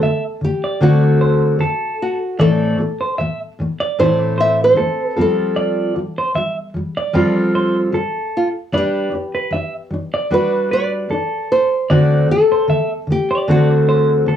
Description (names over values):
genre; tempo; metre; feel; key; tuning
pop; 76 BPM; 4/4; swing 55% on 16ths; G major; A4 = 440 Hz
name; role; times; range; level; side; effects
nylon-string guitar; melody; 0.0-14.4 s; F4 to E5; -18 LUFS; equal; none
fingerpicked steel-string acoustic guitar; accompaniment; 0.0-14.4 s; A2 to B4; -16 LUFS; left 1 dB; cassette tape
clean electric guitar; arpeggios; 0.0-14.4 s; A4 to E5; -22 LUFS; right 2 dB; cassette tape
room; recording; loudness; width
moderate small room reverb, RT60 0.5 s; home recording on cassette, small room ambience; -14 LUFS; side -10 dB against mid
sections
0.0-14.4 A section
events
none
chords
0.0 D7; 2.4 Am; 5.2 Fadd9; 8.7 Gmaj7; 11.9 D7